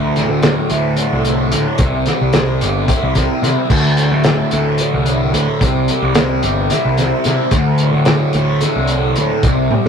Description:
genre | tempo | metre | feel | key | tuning
psychedelic rock | 220 BPM (eighths) | 7/8 | straight | unclear | A4 = 438 Hz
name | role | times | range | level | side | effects
fuzz guitar | riff | 0.0-9.9 s | D2 to G4 | -17 LUFS | equal | distortion, phaser
fuzz picked electric bass | bass | 0.0-9.9 s | G1 to C3 | -17 LUFS | equal | overdrive
cloth-damped thuddy drum kit | drums | 0.2-9.9 s | crash cymbal, hi-hat, kick drum, snare drum, toms | -17 LUFS | equal | none
room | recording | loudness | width
moderate booth ambience, RT60 0.2 s | rough rehearsal-room recording | -13 LUFS | side -7 dB against mid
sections
0.0-9.9 A section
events
drum fill 9.7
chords
0.0 D5; 1.8 C; 3.7 D5; 5.6 C; 7.5 D5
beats
0.16 0.43 0.71 0.98 1.25 1.52 | 1.79 2.07 2.34 2.61 2.88 3.16 3.43 | 3.70 3.98 4.25 4.52 4.79 5.07 5.34 | 5.61 5.88 6.16 6.43 6.70 6.98 7.25 | 7.52 7.80 8.07 8.34 8.62 8.89 9.16 | 9.44 9.71

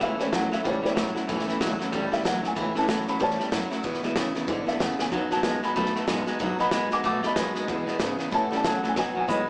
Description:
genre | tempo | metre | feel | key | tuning
rockabilly | 188 BPM | 4/4 | swing 60% on 8ths | unclear | A4 = 439 Hz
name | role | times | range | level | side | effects
dark upright piano | accompaniment | 0.0-9.5 s | F#3 to D6 | -28 LUFS | equal | none
picked steel-string acoustic guitar | accompaniment | 0.0-9.5 s | E2 to A4 | -33 LUFS | equal | none
twangy electric guitar | riff | 0.0-9.5 s | E2 to A3 | -28 LUFS | equal | spring reverb
upright bass | bass | 0.0-9.5 s | F#1 to C#3 | -33 LUFS | equal | none
vintage drum kit | drums | 0.0-9.4 s | hi-hat, kick drum, snare drum, toms | -30 LUFS | equal | none
room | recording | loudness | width
moderate studio reverb, RT60 0.6 s | small speaker sound | -23 LUFS | side -34 dB against mid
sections
0.0-9.5 A section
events
upright piano solo 0.0-9.5; drum fill 5.0, 9.0-9.5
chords
0.0 A; 3.8 E; 5.1 B; 7.7 E; 8.3 A; 9.0 B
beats
| 0.02 0.34 0.65 0.97 | 1.29 1.61 1.93 2.25 | 2.57 2.88 3.20 3.52 | 3.84 4.16 4.48 4.80 | 5.12 5.44 5.76 6.08 | 6.40 6.72 7.04 7.36 | 7.68 8.01 8.33 8.65 | 8.97 9.29

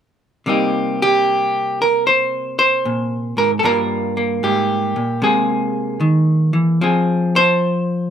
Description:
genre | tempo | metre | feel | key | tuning
solo jazz | 76 BPM | 4/4 | swing 66% on 8ths | C minor | A4 = 443 Hz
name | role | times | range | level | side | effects
vintage hollow-body jazz guitar | solo | 0.5-8.1 s | G2 to C5 | -15 LUFS | equal | none
room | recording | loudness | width
light reverb | close, detailed microphones | -15 LUFS | side -8 dB against mid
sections
0.5-8.1 A section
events
none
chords
0.5 Cm7; 3.6 Gm7; 5.2 C7alt; 6.8 Fm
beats
| 0.46 1.25 2.04 2.84 | 3.63 4.42 5.22 6.01 | 6.80 7.60

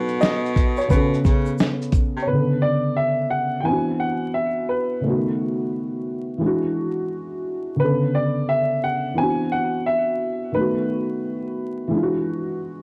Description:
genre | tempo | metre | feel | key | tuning
lo-fi hip hop | 87 BPM | 4/4 | swing 64% on 16ths | B dorian | A4 = 441 Hz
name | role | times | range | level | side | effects
warm upright piano | melody | 0.0-12.6 s | B4 to G#5 | -26 LUFS | equal | low-pass filter, tape echo
felt-muted upright piano | accompaniment | 0.0-12.8 s | C#3 to A4 | -25 LUFS | equal | low-pass filter, cassette tape
clear baritone saxophone | bass | 0.0-2.3 s | B2 to C#3 | -28 LUFS | equal | none
dusty soul sampler-style drum kit | drums | 0.1-2.3 s | hi-hat, kick drum, shaker, snare drum | -22 LUFS | equal | cassette tape
egg shaker | percussion | 0.2-2.1 s | none | -52 LUFS | equal | none
room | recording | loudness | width
moderate studio reverb, RT60 0.6 s | home recording on cassette, vinyl crackle | -22 LUFS | mono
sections
0.0-2.3 A section; 2.3-12.8 B section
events
break 5.0-7.8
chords
0.0 B7; 0.9 Bsus2; 2.3 Bm9; 3.7 D13; 5.0 B7; 6.4 E9; 7.8 Bm9; 9.2 D13; 10.6 B7; 11.9 E9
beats
0.21 0.90 1.59 | 2.28 2.97 3.66 4.35 | 5.04 5.73 6.42 7.11 | 7.80 8.48 9.18 9.87 | 10.55 11.24 11.93 12.62

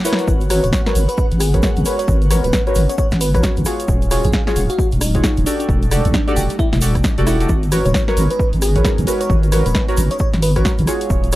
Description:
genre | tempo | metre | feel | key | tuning
UK garage, two-step garage | 133 BPM | 4/4 | swing 61% on 16ths | G# minor | A4 = 439 Hz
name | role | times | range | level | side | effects
bell-like FM electric piano | melody | 0.0-10.6 s | D4 to C#5 | -24 LUFS | equal | chorus, cassette tape, tape echo
airy breathy pad | sustained chords | 0.0-11.4 s | G3 to F#5 | -30 LUFS | right 1 dB | chorus, phaser, sidechain pumping
egg shaker | percussion | 0.0-11.4 s | none | -30 LUFS | right 2 dB | none
deep mellow chord stab | stabs | 0.1-11.4 s | E#4 to D5 | -22 LUFS | equal | chorus, tape echo
house drum kit | drums | 0.1-11.4 s | hi-hat, rim click, snare drum | -23 LUFS | equal | small room ambience
deep soft wobble bass | bass | 0.3-11.4 s | D#1 to B1 | -17 LUFS | equal | chorus, tube saturation, sidechain pumping
electronic kick drum | drums | 0.3-11.2 s | none | -19 LUFS | equal | small room ambience
room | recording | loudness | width
little or no reverb | dry, gritty hardware recording | -14 LUFS | side -16 dB against mid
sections
0.0-11.4 A section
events
break 0.0; drum fill 0.0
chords
0.3 G#m11; 3.7 D#m11; 5.5 Em11; 7.5 G#m11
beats
| 0.28 0.73 1.18 1.63 | 2.08 2.53 2.98 3.43 | 3.88 4.33 4.79 5.24 | 5.69 6.14 6.59 7.04 | 7.49 7.94 8.39 8.85 | 9.30 9.75 10.20 10.65 | 11.10

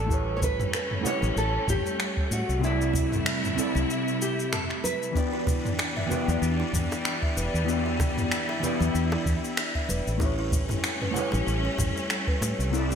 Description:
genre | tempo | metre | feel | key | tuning
sunset chillout | 95 BPM | 4/4 | swing 56% on 16ths | unclear | A4 = 438 Hz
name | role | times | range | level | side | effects
nylon-string guitar | melody | 0.0-5.4 s | E4 to C#5 | -31 LUFS | right 1 dB | lush chorus, digital delay
hollow-body jazz guitar | accompaniment | 0.0-13.0 s | C3 to F#5 | -31 LUFS | left 1 dB | auto-pan, low-pass filter, digital delay
warm studio string section | sustained chords | 0.0-13.0 s | C3 to E4 | -32 LUFS | equal | none
fingered electric bass | bass | 0.0-13.0 s | E1 to A2 | -28 LUFS | equal | none
deep house drum kit | drums | 0.1-13.0 s | cabasa, finger snaps, toms | -31 LUFS | equal | gated reverb
electronic kick drum | drums | 0.1-12.4 s | none | -28 LUFS | equal | overdrive
congas and bongos | percussion | 0.4-13.0 s | none | -38 LUFS | right 3 dB | none
buzzing kalimba | arpeggios | 5.2-13.0 s | C#4 to E5 | -35 LUFS | left 1 dB | digital delay
room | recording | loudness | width
moderate plate reverb, RT60 2.7 s | bright 1980s-style digital production | -24 LUFS | side -7 dB against mid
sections
0.0-13.0 A section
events
break 3.9-5.2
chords
0.1 A13; 2.6 C6; 5.2 Em7; 10.2 A13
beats
| 0.10 0.73 1.36 1.99 | 2.63 3.26 3.89 4.52 | 5.15 5.78 6.42 7.05 | 7.68 8.31 8.94 9.57 | 10.21 10.84 11.47 12.10 | 12.73

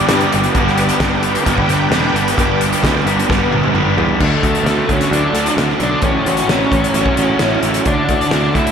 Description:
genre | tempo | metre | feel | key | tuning
rock, shoegaze and dream pop | 131 BPM | 4/4 | straight | unclear | A4 = 440 Hz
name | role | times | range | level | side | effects
octave-fuzz lead guitar | melody | 0.0, 4.2-8.7 s | A3 to E4 | -21 LUFS | equal | distortion, analog delay
analog string pad | sustained chords | 0.0-4.2 s | B4 to D6 | -24 LUFS | right 1 dB | ensemble chorus
overdriven semi-hollow guitar | riff | 0.0-8.7 s | G2 to E4 | -19 LUFS | right 9 dB | reverse reverb
raw garage guitar | riff | 0.0-8.7 s | A2 to B4 | -19 LUFS | left 6 dB | overdrive, wide subtle chorus
picked electric bass | bass | 0.1-8.7 s | E1 to G2 | -20 LUFS | equal | none
loose indie drum kit | drums | 0.1-8.7 s | crash cymbal, hi-hat, kick drum, snare drum, toms | -19 LUFS | equal | none
room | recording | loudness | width
wet huge ambient reverb, RT60 7.8 s | dreamy mix soaked in reverb | -12 LUFS | side -7 dB against mid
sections
0.5-4.2 A section; 4.2-8.7 B section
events
drum fill 3.3-4.2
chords
0.0 G; 4.2 D; 6.0 A6; 7.9 D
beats
0.09 | 0.55 1.00 1.46 1.92 | 2.37 2.83 3.29 3.75 | 4.20 4.66 5.12 5.58 | 6.03 6.49 6.95 7.41 | 7.87 8.32

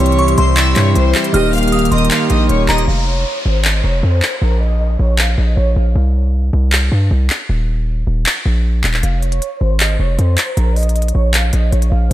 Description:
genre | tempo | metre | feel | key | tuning
hip hop, trap | 156 BPM | 4/4 | half-time | unclear | A4 = 440 Hz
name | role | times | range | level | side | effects
warm studio violin section | melody | 0.0-5.9, 9.0-12.1 s | Bb4 to F6 | -22 LUFS | equal | low-pass filter, ping-pong delay
glassy synth bell | second line | 0.0-2.9 s | Bb5 to F6 | -23 LUFS | left 1 dB | chorus, ping-pong delay
warbly lo-fi synth keys | accompaniment | 0.0-2.9 s | C3 to G4 | -17 LUFS | right 2 dB | chorus, low-pass filter
pipe organ, full organ | sustained chords | 0.0-2.9 s | C3 to G4 | -20 LUFS | left 1 dB | none
hard-hitting 808-style bass | bass | 0.0-12.1 s | Eb1 to G2 | -14 LUFS | equal | none
trap drum kit | drums | 0.1-12.1 s | handclaps, hi-hat | -19 LUFS | equal | none
downlifter | sound effects | 2.9-6.0 s | none | -28 LUFS | equal | none
room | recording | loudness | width
light reverb | none | -12 LUFS | side -14 dB against mid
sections
0.0-2.9 A section; 2.9-12.1 B section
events
break 2.9-9.0; filter sweep 2.9-12.1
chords
0.0 C; 1.3 Eb; 2.9 Fm; 4.4 Bbm; 6.0 C5; 7.5 Eb5; 9.0 Fm; 10.6 Bbm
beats
0.19 0.57 0.96 | 1.34 1.73 2.11 2.49 | 2.88 3.26 3.65 4.03 | 4.42 4.80 5.19 5.57 | 5.96 6.34 6.72 7.11 | 7.49 7.88 8.26 8.65 | 9.03 9.42 9.80 10.19 | 10.57 10.96 11.34 11.72 | 12.11

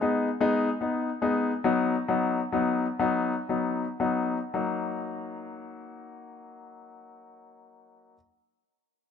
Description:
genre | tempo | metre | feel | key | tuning
pop | 36-50 BPM (dotted quarters) | 6/8 | straight | Eb minor | A4 = 440 Hz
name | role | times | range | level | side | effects
clear concert grand piano | accompaniment | 0.0-8.1 s | F#3 to Eb4 | -26 LUFS | left 3 dB | none
room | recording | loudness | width
light reverb, studio ambience | none | -25 LUFS | side -7 dB against mid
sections
0.0-4.6 A section; 4.6-7.9 B section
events
slowing down 0.0-4.6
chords
0.0 Abm; 1.7 B; 4.6 Ebm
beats
0.41 | 1.66 3.02 | 4.56 6.22

